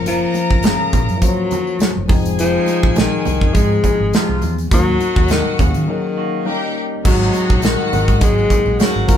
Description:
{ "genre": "lush 1970s-style soul", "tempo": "103 BPM", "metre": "4/4", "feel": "swing 54% on 16ths", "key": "unclear", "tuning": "A4 = 437 Hz", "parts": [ { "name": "warm studio string section", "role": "second line", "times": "0.0-9.2 s", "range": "Gb4 to Bb5", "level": "-25 LUFS", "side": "left 1 dB", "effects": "none" }, { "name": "tine electric piano", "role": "accompaniment", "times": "0.0-9.2 s", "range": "F3 to Db5", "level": "-22 LUFS", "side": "left 4 dB", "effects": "none" }, { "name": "vintage muted fingered electric bass", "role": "bass", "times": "0.0-9.2 s", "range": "F1 to Eb3", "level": "-20 LUFS", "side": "right 1 dB", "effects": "none" }, { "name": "breathy tenor saxophone", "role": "melody", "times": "0.1-9.1 s", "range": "Db3 to Ab3", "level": "-20 LUFS", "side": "left 3 dB", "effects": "none" }, { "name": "modern studio drum kit", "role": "drums", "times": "0.1-9.2 s", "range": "crash cymbal, hi-hat, kick drum, snare drum", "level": "-17 LUFS", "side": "right 1 dB", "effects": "none" }, { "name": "congas", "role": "percussion", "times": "0.1-9.2 s", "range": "none", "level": "-28 LUFS", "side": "right 3 dB", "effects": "none" }, { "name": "tambourine", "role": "percussion", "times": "0.1-9.2 s", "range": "none", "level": "-40 LUFS", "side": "right 7 dB", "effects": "none" }, { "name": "clear horn section", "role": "stabs", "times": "2.4-9.2 s", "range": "C3 to Ab4", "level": "-26 LUFS", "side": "right 4 dB", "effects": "none" }, { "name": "clean electric guitar", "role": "riff", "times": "6.2-7.0 s", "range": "G3 to G4", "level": "-26 LUFS", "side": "right 2 dB", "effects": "none" } ], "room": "moderate studio ambience, RT60 0.5 s", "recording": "band playing live in one room", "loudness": "-14 LUFS", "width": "side -9 dB against mid", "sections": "0.0-7.0 A section; 7.0-9.2 A section", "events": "break 5.9-7.0", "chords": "0.0 Gbmaj7; 2.1 Fm7; 4.7 Ebm7; 6.5 Eb7; 7.0 Ab7", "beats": "| 0.06 0.64 1.22 1.80 | 2.39 2.97 3.55 4.13 | 4.72 5.30 5.88 6.46 | 7.05 7.63 8.21 8.79" }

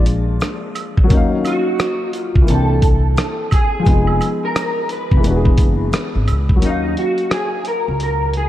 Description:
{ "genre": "lo-fi hip hop", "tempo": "87 BPM", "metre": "4/4", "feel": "swing 63% on 16ths", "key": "Eb minor", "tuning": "A4 = 440 Hz", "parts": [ { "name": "electric guitar at the edge of break-up", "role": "melody", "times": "0.0-8.5 s", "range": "Eb4 to Cb5", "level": "-22 LUFS", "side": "right 1 dB", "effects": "ensemble chorus, low-pass filter" }, { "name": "warm upright piano", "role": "accompaniment", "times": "0.0-8.5 s", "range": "E3 to G5", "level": "-21 LUFS", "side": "left 3 dB", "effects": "cassette tape, low-pass filter" }, { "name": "upright bass", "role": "bass", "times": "0.0-8.5 s", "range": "E1 to Eb2", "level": "-18 LUFS", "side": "equal", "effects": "none" }, { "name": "dusty soul sampler-style drum kit", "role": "drums", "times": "0.1-8.5 s", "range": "hi-hat, kick drum, rim click", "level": "-16 LUFS", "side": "equal", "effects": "none" }, { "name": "egg shaker and woodblock", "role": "percussion", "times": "0.1-6.5 s", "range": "none", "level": "-32 LUFS", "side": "right 7 dB", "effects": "none" } ], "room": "light reverb, studio reverb", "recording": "lossy compression artefacts", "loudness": "-14 LUFS", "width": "side -13 dB against mid", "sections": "0.0-6.6 A section; 6.6-8.5 B section", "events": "break 6.6-8.5", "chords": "0.0 Bb7; 1.1 Ebm7; 2.5 C7; 3.9 Fm7b5; 5.2 E7; 6.6 Ebm7", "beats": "0.41 | 1.10 1.79 2.48 3.17 | 3.86 4.55 5.24 5.93 | 6.62 7.31 8.00" }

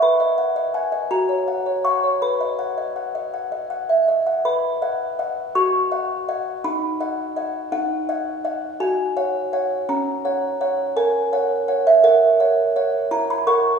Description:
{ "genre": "classical, lullaby for music box", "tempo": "55 BPM (dotted quarters)", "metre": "6/8", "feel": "straight", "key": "B major", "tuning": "A4 = 440 Hz", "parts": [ { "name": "music box", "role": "solo", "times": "0.0-13.8 s", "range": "C#4 to C#6", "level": "-18 LUFS", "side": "right 1 dB", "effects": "none" } ], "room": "wet recital hall reverb, RT60 1.7 s", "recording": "recorded in a church or concert hall, studio reverb", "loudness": "-18 LUFS", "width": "side -6 dB against mid", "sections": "0.0-4.4 A section; 4.4-13.8 B section", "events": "none", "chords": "0.0 B; 1.1 F#; 2.2 B; 6.6 B/D#; 8.8 F#; 11.0 F#/A#; 13.1 F#7/E", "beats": "| 0.01 1.11 | 2.22 3.34 | 4.45 5.55 | 6.64 7.72 | 8.80 9.89 | 10.96 12.04 | 13.11" }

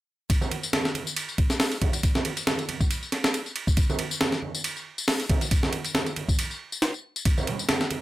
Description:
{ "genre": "breakbeat, breaks", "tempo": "138 BPM", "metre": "4/4", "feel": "swing 54% on 16ths", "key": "none", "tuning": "none", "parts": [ { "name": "breakbeat sampler-style drum kit", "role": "drums", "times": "0.3-8.0 s", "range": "hi-hat, kick drum, ride cymbal, snare drum", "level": "-24 LUFS", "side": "equal", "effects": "none" }, { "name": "tambourine", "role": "drums", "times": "0.3-7.9 s", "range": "none", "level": "-34 LUFS", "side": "left 4 dB", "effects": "none" }, { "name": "congas", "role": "percussion", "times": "0.4-8.0 s", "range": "none", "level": "-32 LUFS", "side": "right 3 dB", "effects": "none" } ], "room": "little or no reverb", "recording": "none", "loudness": "-24 LUFS", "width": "side -16 dB against mid", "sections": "0.3-8.0 A section", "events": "none", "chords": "none", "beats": "| 0.30 0.73 1.17 1.60 | 2.04 2.47 2.91 3.34 | 3.78 4.21 4.65 5.08 | 5.52 5.95 6.39 6.82 | 7.25 7.69" }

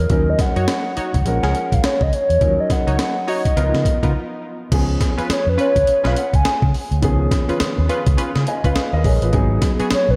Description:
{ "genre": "R&B, new jack swing", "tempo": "104 BPM", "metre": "4/4", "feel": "swing 61% on 16ths", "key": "unclear", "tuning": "A4 = 440 Hz", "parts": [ { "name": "hollow clarinet-like synth lead", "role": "melody", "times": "0.0-10.2 s", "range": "Bb4 to Ab5", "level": "-23 LUFS", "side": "equal", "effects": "chorus" }, { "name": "warm baby grand piano", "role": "accompaniment", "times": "0.0-10.2 s", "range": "Eb3 to Ab5", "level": "-27 LUFS", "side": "equal", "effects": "none" }, { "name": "vintage muted fingered electric bass", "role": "bass", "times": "0.0-10.2 s", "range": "Ab1 to Db3", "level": "-22 LUFS", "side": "equal", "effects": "none" }, { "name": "breakbeat sampler-style drum kit", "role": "drums", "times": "0.1-10.1 s", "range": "crash cymbal, hi-hat, kick drum, snare drum", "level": "-23 LUFS", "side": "equal", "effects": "none" }, { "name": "funky polysynth comp", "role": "stabs", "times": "0.6-9.9 s", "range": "Cb4 to Db5", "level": "-29 LUFS", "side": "equal", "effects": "chorus, tape echo" } ], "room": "moderate lush hall reverb, RT60 2.4 s", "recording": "dreamy mix soaked in reverb", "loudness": "-18 LUFS", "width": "mono", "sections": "0.0-4.7 A section; 4.7-10.2 B section", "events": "break 4.1-4.7", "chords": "0.1 Ebm7; 1.3 Bbm7; 2.4 Ebm7; 3.6 Db13; 4.7 Db7; 9.3 Abm7", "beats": "| 0.10 0.68 1.26 1.83 | 2.41 2.99 3.56 4.14 | 4.72 5.29 5.87 6.45 | 7.03 7.60 8.18 8.76 | 9.33 9.91" }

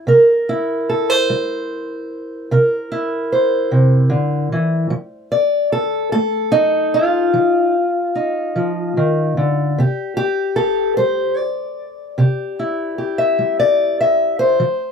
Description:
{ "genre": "acoustic country blues, solo or duo", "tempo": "50 BPM (dotted quarters)", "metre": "12/8", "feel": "straight", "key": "C mixolydian", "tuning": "A4 = 440 Hz", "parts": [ { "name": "fingerpicked steel-string acoustic guitar", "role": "solo", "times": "0.0-14.9 s", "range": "C3 to E5", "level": "-15 LUFS", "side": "equal", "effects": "none" } ], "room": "wet booth ambience, RT60 0.2 s", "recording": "none", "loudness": "-15 LUFS", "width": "side -6 dB against mid", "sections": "0.0-14.9 A section", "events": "none", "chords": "0.0 C7; 4.9 F7; 9.8 C", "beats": "| 0.07 1.28 2.50 3.71 | 4.92 6.13 7.34 8.55 | 9.76 10.97 12.18 13.39 | 14.61" }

